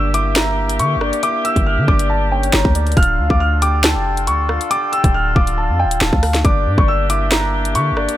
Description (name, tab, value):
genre	hip hop, drill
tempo	138 BPM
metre	4/4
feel	half-time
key	unclear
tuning	A4 = 441 Hz
part	dark concert grand piano	melody	0.0-8.2 s	G5 to F6	-20 LUFS	right 1 dB	digital delay
part	soft octave-layered synth lead	second line	0.0-8.2 s	C#5 to G5	-24 LUFS	left 4 dB	chorus, digital delay
part	warm woodwind section	sustained chords	0.0-8.2 s	D3 to A4	-25 LUFS	equal	none
part	hard-hitting 808-style bass	bass	0.0-8.1 s	D1 to D3	-18 LUFS	equal	none
part	drill drum kit	drums	0.1-8.2 s	hi-hat, kick drum, rim click, snare drum	-17 LUFS	equal	none
room	little or no reverb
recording	none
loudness	-14 LUFS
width	side -13 dB against mid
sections	0.0-8.2 A section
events	none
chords	0.0 Gm; 3.0 Dm; 6.4 Gm